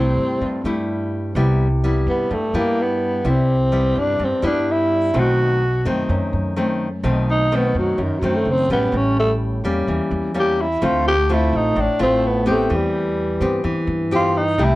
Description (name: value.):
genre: bossa nova.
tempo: 127 BPM.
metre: 4/4.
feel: straight.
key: C major.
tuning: A4 = 439 Hz.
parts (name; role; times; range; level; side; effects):
growling tenor saxophone; melody; 0.0-14.8 s; D#3 to G4; -19 LUFS; equal; plate reverb.
nylon-string guitar; accompaniment; 0.0-14.8 s; F#2 to G4; -21 LUFS; left 1 dB; none.
upright bass; bass; 0.0-14.8 s; F#1 to G2; -22 LUFS; equal; none.
room: light reverb.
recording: none.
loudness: -17 LUFS.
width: side -18 dB against mid.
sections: 0.0-1.4 A section; 1.4-14.8 B section.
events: tenor saxophone solo 1.4-14.8.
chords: 0.0 C6; 1.4 Cmaj7; 5.1 B7b9; 8.9 A7b9; 10.8 Dm7; 12.7 Cmaj7/E.